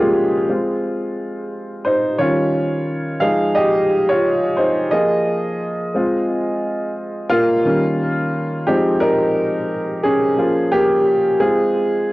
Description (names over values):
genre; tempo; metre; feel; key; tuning
hip hop; 88 BPM; 4/4; swing 57% on 16ths; Ab major; A4 = 439 Hz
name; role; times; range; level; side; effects
warm upright piano; solo; 0.0-12.1 s; Eb3 to F5; -16 LUFS; equal; cassette tape, tape echo
room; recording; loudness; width
wet studio ambience, RT60 0.5 s; worn, warbling old tape, cassette tape, warbly pitch drift; -16 LUFS; side -19 dB against mid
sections
0.0-12.1 A section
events
upright piano solo 0.0-12.1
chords
0.5 Ab6; 2.2 Eb9; 3.2 Fm9; 4.9 Fm7; 5.9 Ab6; 7.6 Eb9; 8.7 Fm7; 10.4 Db6/F; 11.4 Ab6